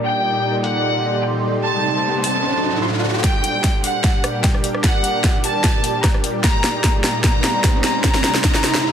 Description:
heavy wobble dubstep; 150 BPM; 4/4; swing 53% on 16ths, half-time; G harmonic minor; A4 = 440 Hz
clear chamber violin section; melody; 0.0-8.8 s; F#5 to C6; -22 LUFS; equal; digital delay
supersaw pad; sustained chords; 0.0-8.9 s; A2 to G4; -24 LUFS; equal; sidechain pumping
riser; sound effects; 1.3-8.9 s; -26 LUFS; right 1 dB
ethereal airy pad; texture; 0.0-8.8 s; A3 to D6; -26 LUFS; right 1 dB; ensemble chorus, built-in reverb, sidechain pumping
dubstep drum kit; drums; 0.6-8.8 s; hi-hat, rim click, snare drum; -20 LUFS; equal
electronic kick drum; drums; 3.2-8.5 s; -18 LUFS; equal
light reverb, digital ambience; dense, heavily limited modern master, low-pass filter; -16 LUFS; side -8 dB against mid
0.0-3.2 A section; 3.2-8.9 B section
riser 1.3-3.2, 3.2-8.9; build-up 3.2-8.9; drum fill 3.2-8.8
0.0 Eb; 1.6 Cm; 2.4 D; 3.2 Gm; 6.4 Eb; 8.0 Cm

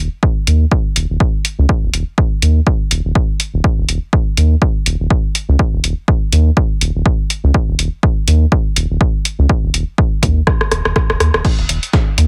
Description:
minimal techno; 123 BPM; 4/4; swing 57% on 16ths; A4 = 440 Hz
round analog bass; bass; 0.0-12.3 s; Eb1 to Eb2; -15 LUFS; equal; sidechain pumping
electronic kick drum; drums; 0.2-12.0 s; -17 LUFS; equal
punchy analog drum machine; drums; 0.5-12.3 s; crash cymbal, hi-hat, rim click; -18 LUFS; equal
dusty soul sampler-style drum kit; drums; 11.4-12.3 s; hi-hat, snare drum; -28 LUFS; equal; sidechain pumping on hats, high-pass filter on hats, high-pass filter on snare, high-pass filter on room
little or no reverb; heavily compressed radio sound, multiband compression; -15 LUFS; mono
0.0-12.3 A section
drum fill 10.5-11.4

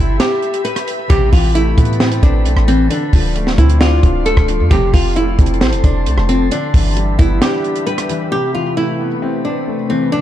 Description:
hip hop, trap; 133 BPM; 4/4; half-time; A minor; A4 = 440 Hz
nylon-string guitar; melody; 0.0-10.2 s; C4 to B4; -18 LUFS; equal; ping-pong delay
glassy FM pad; sustained chords; 0.0-10.2 s; C3 to C6; -25 LUFS; left 2 dB; ensemble chorus, built-in reverb
warm 808-style bass; bass; 0.0-7.4 s; D1 to A2; -15 LUFS; equal
compact cocktail drum kit; drums; 0.2-8.2 s; hi-hat, kick drum, rim click, snare drum; -14 LUFS; equal; vintage 12-bit sampler grit
dark grand piano; accompaniment; 1.1-10.2 s; C3 to C5; -22 LUFS; left 3 dB
clear symphonic string section; stabs; 1.1-1.3, 4.7-4.9 s; E2 to F3; -27 LUFS; right 6 dB
studio reverb; dark, warm production; -12 LUFS; side -12 dB against mid
0.0-8.3 A section; 8.3-10.2 B section
break 0.2-1.1, 7.4-8.3
0.0 G6; 1.1 Amadd9; 2.9 Dm7; 4.7 F; 6.5 G6; 8.3 Amadd9

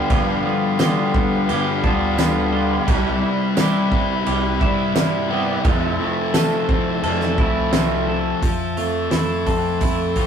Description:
rock, shoegaze and dream pop; 87 BPM; 4/4; straight; A4 = 440 Hz
hand-pumped harmonium; sustained chords; 0.0-10.3 s; E4 to B5; -28 LUFS; left 3 dB
twelve-string electric guitar; arpeggios; 0.0-10.3 s; F3 to A4; -26 LUFS; right 1 dB
electric guitar through a small old amp; riff; 0.0-10.3 s; G2 to F4; -24 LUFS; right 3 dB
thick fuzz guitar; riff; 0.0-10.3 s; F2 to A4; -23 LUFS; left 5 dB; distortion
fingered electric bass; bass; 0.1-10.3 s; C2 to G2; -28 LUFS; equal
loose indie drum kit; drums; 0.1-10.3 s; crash cymbal, hi-hat, kick drum, snare drum; -22 LUFS; right 1 dB
tambourine; percussion; 0.8-7.9 s; -35 LUFS; right 8 dB
wet studio reverb, RT60 0.6 s; rough rehearsal-room recording, warm saturation; -17 LUFS; side -7 dB against mid
0.0-8.4 A section; 8.4-10.3 B section
0.0 G7; 2.9 Cmaj7; 5.6 Fmaj7

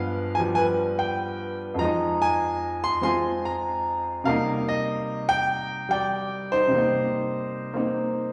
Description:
solo jazz; 98 BPM; 4/4; swing 69% on 8ths; C minor; A4 = 436 Hz
clear baby grand piano; solo; 0.0-8.3 s; F2 to C6; -25 LUFS; equal
wet recital hall reverb, RT60 1.6 s; recorded in a church or concert hall, small room reverb; -25 LUFS; mono
0.0-8.3 A section
0.0 G7b9; 1.8 Fm7; 4.2 Cm7

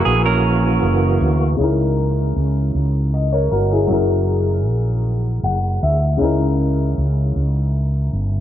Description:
R&B; 52 BPM (dotted quarters); 6/8; straight; C# dorian; A4 = 439 Hz
semi-hollow electric guitar; second line; 0.0-1.4 s; C#4 to A#4; -22 LUFS; right 6 dB
warm baby grand piano; accompaniment; 0.0-8.4 s; C#3 to F#5; -21 LUFS; left 2 dB; lush chorus
percussive tonewheel organ; sustained chords; 0.0-1.6 s; E3 to F#4; -22 LUFS; right 3 dB; overdrive, chorus vibrato, slow rotary speaker
mellow fretless electric bass; bass; 0.1-8.4 s; F#1 to D2; -18 LUFS; equal
moderate cathedral reverb, RT60 4.0 s; dreamy mix soaked in reverb, low-pass filter; -16 LUFS; side -11 dB against mid
0.0-1.6 A section; 1.6-8.4 B section
filter sweep 1.6-8.4; grand piano fill 5.0-6.2
0.0 F#7; 1.6 C#m69; 3.9 F#7; 6.2 C#m69

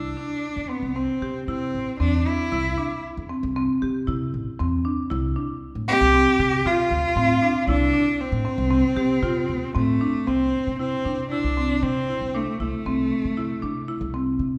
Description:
contemporary instrumental, chamber music in an uneven meter; 116 BPM; 5/4; straight; C major; A4 = 440 Hz
clear cello; melody; 0.0-14.1 s; A3 to G4; -26 LUFS; equal
marimba with hard mallets; arpeggios; 0.0-14.6 s; C4 to G4; -27 LUFS; equal
upright bass; bass; 0.0-14.6 s; A1 to C3; -30 LUFS; equal
wet recital hall reverb, RT60 1.7 s; recorded in a church or concert hall; -23 LUFS; mono
0.0-10.3 A section; 10.3-14.6 B section
0.0 Cadd9; 5.1 F5/C; 10.3 C6

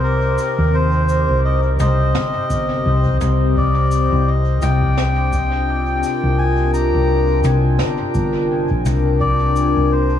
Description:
ambient dub; 85 BPM; 4/4; swing 59% on 16ths; A4 = 439 Hz
melodica; melody; 0.0-10.2 s; Bb4 to Bb5; -22 LUFS; left 2 dB; dub echo
warbly tape-like pad; sustained chords; 0.0-10.2 s; C3 to C5; -20 LUFS; left 2 dB; chorus, built-in reverb
hollow-body short-scale fingered electric bass; bass; 0.0-10.2 s; G1 to Eb2; -17 LUFS; equal; tube saturation
jazz brush drum kit; drums; 0.4-9.7 s; cabasa, snare drum, toms; -29 LUFS; equal; dub echo
electronic kick drum; drums; 2.5-9.4 s; -26 LUFS; equal
light reverb, studio reverb; echo-heavy mix, vinyl crackle, small room ambience; -15 LUFS; side -10 dB against mid
0.0-10.2 A section
0.0 Cm7; 3.6 Bb

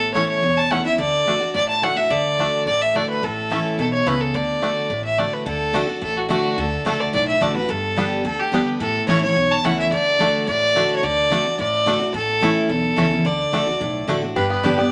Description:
bluegrass; 215 BPM; 4/4; straight; D major; A4 = 440 Hz
rich fiddle; melody; 0.0-14.9 s; F#4 to A5; -22 LUFS; equal
picked steel-string acoustic guitar; accompaniment; 0.0-14.9 s; E2 to G4; -25 LUFS; equal
upright bass; bass; 0.0-14.9 s; E1 to D2; -35 LUFS; equal
bluegrass banjo; melody; 0.2-14.9 s; G3 to G4; -29 LUFS; equal
lap resonator guitar; second line; 14.4-14.9 s; D4 to G4; -25 LUFS; equal
moderate studio reverb, RT60 0.8 s; -20 LUFS; mono
0.0-5.5 A section; 5.5-14.4 A section
0.0 A; 1.0 D; 3.2 A; 4.3 D; 7.7 G; 8.8 A; 9.9 D; 12.1 A; 13.3 D; 14.4 G

